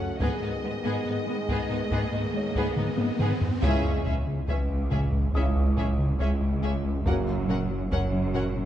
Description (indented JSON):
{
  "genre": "cinematic, hybrid orchestral and electronic film score",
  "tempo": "70 BPM",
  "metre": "4/4",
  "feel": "straight",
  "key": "C# dorian from 3.6 s",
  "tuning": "A4 = 440 Hz",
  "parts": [
    { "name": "rich symphonic violin section", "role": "melody", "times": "0.0-8.4 s", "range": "D#5 to F#5", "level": "-38 LUFS", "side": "left 4 dB", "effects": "none" },
    { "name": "bright trombone section", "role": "sustained chords", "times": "0.0-7.4 s", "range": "C#3 to A#3", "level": "-37 LUFS", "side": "right 3 dB", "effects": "none" },
    { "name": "mellow French horn section", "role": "sustained chords", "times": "0.0-7.4 s", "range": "B3 to G#4", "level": "-35 LUFS", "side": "left 4 dB", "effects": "none" },
    { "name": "smooth synth bass", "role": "riff", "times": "0.0-8.7 s", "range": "C#2 to G#3", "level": "-31 LUFS", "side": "left 1 dB", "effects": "none" },
    { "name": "riser and sub drop", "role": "sound effects", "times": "0.1-7.1 s", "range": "none", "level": "-36 LUFS", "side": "right 1 dB", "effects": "none" },
    { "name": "felt-muted upright piano", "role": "texture", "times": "0.0-8.7 s", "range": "E4 to D#6", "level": "-40 LUFS", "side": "left 2 dB", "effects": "tape echo" },
    { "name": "rich symphonic violin section", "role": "second line", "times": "0.2-8.4 s", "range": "B3 to A#4", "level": "-38 LUFS", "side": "left 1 dB", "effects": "none" },
    { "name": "rich symphonic viola section", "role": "accompaniment", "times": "0.2-8.4 s", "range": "B3 to C#4", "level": "-37 LUFS", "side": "right 1 dB", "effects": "none" },
    { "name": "rich symphonic cello section", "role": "bass", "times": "0.2-8.7 s", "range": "C#2 to G#2", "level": "-32 LUFS", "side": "right 2 dB", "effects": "none" },
    { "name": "solo taiko drums", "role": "drums", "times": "0.2-8.7 s", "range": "none", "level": "-31 LUFS", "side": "equal", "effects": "none" },
    { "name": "warm sub bass", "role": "bass", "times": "3.6-8.7 s", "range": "F#1 to C#2", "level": "-32 LUFS", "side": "equal", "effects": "none" },
    { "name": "warm symphonic double bass section", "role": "bass", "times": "3.6-8.7 s", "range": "F#1 to C#2", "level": "-32 LUFS", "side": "right 4 dB", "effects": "none" }
  ],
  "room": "moderate concert hall reverb, RT60 2.2 s",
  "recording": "dark, warm production, nothing above 10.6 kHz",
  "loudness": "-24 LUFS",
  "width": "side -11 dB against mid",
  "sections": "0.0-3.6 A section; 3.6-8.7 B section",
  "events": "riser 0.1-3.6; drum fill 2.8-3.6; band accent 3.6-4.5; impact 3.6-7.1",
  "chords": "0.2 G#m; 3.6 C#m; 7.1 F#",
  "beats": "| 0.20 1.06 1.92 2.78 | 3.63 4.49 5.35 6.21 | 7.06 7.92"
}